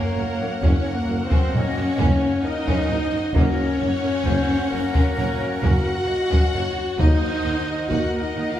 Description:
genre	cinematic, epic orchestral film score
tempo	66 BPM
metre	4/4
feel	straight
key	unclear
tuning	A4 = 440 Hz
part	warm symphonic violin section	melody	0.0-8.6 s	Bb4 to Gb5	-33 LUFS	left 3 dB	none
part	hollow concert flute	second line	0.0-8.6 s	Bb4 to Eb5	-32 LUFS	equal	none
part	warm symphonic violin section	second line	0.0-8.6 s	Db4 to Gb5	-33 LUFS	left 2 dB	none
part	warm symphonic viola section	accompaniment	0.0-8.6 s	F3 to Gb4	-30 LUFS	equal	none
part	dark trombone section	sustained chords	0.0-7.3 s	Gb3 to Bb3	-35 LUFS	right 3 dB	none
part	mellow French horn section	sustained chords	0.0-8.6 s	Bb3 to Gb4	-25 LUFS	left 2 dB	none
part	warm woodwind section	sustained chords	0.0-8.6 s	Bb3 to Gb5	-34 LUFS	right 2 dB	none
part	dark chamber double bass section	bass	0.2-8.4 s	Gb1 to Eb2	-30 LUFS	right 1 dB	none
part	mellow tuba	bass	0.2-8.4 s	Gb1 to Eb2	-31 LUFS	right 2 dB	none
part	rich symphonic cello section	bass	0.2-8.6 s	Eb2 to Gb2	-31 LUFS	right 2 dB	none
part	taiko ensemble	drums	0.6-8.6 s	none	-22 LUFS	equal	none
room	wet recital hall reverb, RT60 1.7 s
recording	recorded in a church or concert hall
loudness	-19 LUFS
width	side -11 dB against mid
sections	0.0-8.6 A section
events	none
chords	0.0 Gb; 7.0 Ebm

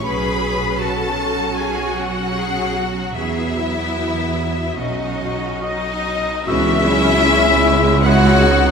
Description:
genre	cinematic, emotional film score for orchestra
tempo	72-79 BPM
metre	4/4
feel	rubato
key	C# minor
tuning	A4 = 440 Hz
part	rich symphonic violin section	melody	0.0-8.7 s	D#5 to B5	-21 LUFS	left 4 dB	none
part	rich symphonic violin section	second line	0.0-8.7 s	D#4 to B4	-24 LUFS	left 3 dB	none
part	warm symphonic viola section	accompaniment	0.0-8.7 s	E3 to E4	-22 LUFS	right 1 dB	none
part	rich symphonic cello section	bass	0.0-8.7 s	C#2 to G#4	-25 LUFS	right 3 dB	none
part	rich symphonic double bass section	bass	0.0-8.7 s	B1 to E2	-23 LUFS	right 3 dB	none
part	cymbal swell and tam-tam	percussion	3.2-8.7 s	none	-28 LUFS	equal	none
part	warm oboe	second line	5.6-8.7 s	D#5 to F#5	-23 LUFS	left 2 dB	none
part	mellow clarinet	second line	6.5-8.7 s	E4 to C#5	-23 LUFS	left 1 dB	none
part	dark French horn section	sustained chords	6.5-8.7 s	C#4 to G#4	-22 LUFS	left 2 dB	none
room	wet concert hall reverb, RT60 2.5 s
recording	minimal, uncompressed stereo recording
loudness	-15 LUFS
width	side -6 dB against mid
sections	0.0-6.5 A section; 6.5-8.7 B section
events	band accent 6.5-7.3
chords	0.1 Bsus2; 3.2 Eadd9; 4.8 Badd9; 6.5 C#m

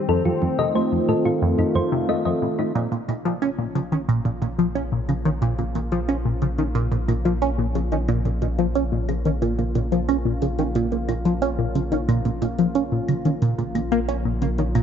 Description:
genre	ambient, sequencer-driven space music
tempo	90 BPM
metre	4/4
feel	straight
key	Bb minor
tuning	A4 = 441 Hz
part	sweeping resonant pad	sustained chords	0.0-14.8 s	Db3 to F4	-28 LUFS	equal	chorus
part	thumb-piano-like synth pluck	arpeggios	0.1-2.7 s	Eb4 to Eb5	-25 LUFS	left 3 dB	chorus, auto-pan, analog delay
part	tight sequenced synth	riff	0.1-14.8 s	F2 to Db4	-22 LUFS	equal	chorus, analog delay
part	round analog bass	bass	2.8-14.8 s	Bb1	-27 LUFS	equal	none
part	electronic hi-hat and claves	percussion	2.8-14.8 s	none	-46 LUFS	left 5 dB	analog delay
room	moderate plate reverb, RT60 2.6 s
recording	nothing above 7.7 kHz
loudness	-20 LUFS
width	side -8 dB against mid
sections	0.0-2.8 A section; 2.8-14.8 B section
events	fade-in on analog synth pad 2.8-14.8; fade-in on drum 2.8-14.8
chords	0.1 F7; 2.8 Bbm

